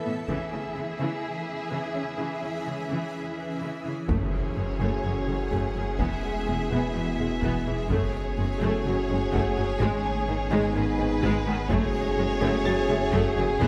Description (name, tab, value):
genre	cinematic, hybrid orchestral and electronic film score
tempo	126 BPM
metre	4/4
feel	straight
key	F# dorian from 4.1 s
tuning	A4 = 440 Hz
part	warm symphonic violin section	second line	0.0-13.7 s	G#4 to E5	-38 LUFS	equal	none
part	warm symphonic viola section	accompaniment	0.0-13.7 s	D#3 to E4	-35 LUFS	equal	none
part	granular cloud pad	sustained chords	0.0-13.7 s	E3 to F#5	-38 LUFS	equal	built-in reverb
part	rich studio cello section	bass	0.0-13.7 s	E2 to C#3	-34 LUFS	equal	none
part	warm grand piano	texture	0.0-13.7 s	G#3 to A6	-42 LUFS	equal	none
part	taiko ensemble	drums	0.3-1.2, 4.1-13.7 s	none	-36 LUFS	equal	none
part	warm symphonic violin section	melody	4.1-13.7 s	B4 to E5	-38 LUFS	equal	none
part	mellow French horn section	sustained chords	4.1-13.7 s	B3 to F#4	-35 LUFS	equal	none
part	warm trombone section	sustained chords	4.1-13.7 s	G#2 to G#4	-35 LUFS	equal	none
part	dark symphonic double bass section	bass	4.1-13.7 s	E1 to G#1	-35 LUFS	equal	none
part	punchy sub bass	bass	4.1-13.7 s	E1 to G#1	-36 LUFS	equal	none
part	impact	sound effects	4.1-6.0 s	none	-38 LUFS	equal	none
room	moderate concert hall reverb, RT60 1.8 s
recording	none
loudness	-27 LUFS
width	mono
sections	0.0-4.1 A section; 4.1-13.7 B section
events	build-up 0.0-4.1; impact 4.1-6.0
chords	0.3 C#m; 4.1 F#madd9; 6.0 E; 7.9 F#madd9; 9.8 G#m; 11.7 F#madd9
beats	| 0.28 0.76 1.23 1.71 | 2.19 2.66 3.14 3.62 | 4.09 4.57 5.04 5.52 | 6.00 6.47 6.95 7.42 | 7.90 8.38 8.85 9.33 | 9.81 10.28 10.76 11.23 | 11.71 12.19 12.66 13.14 | 13.62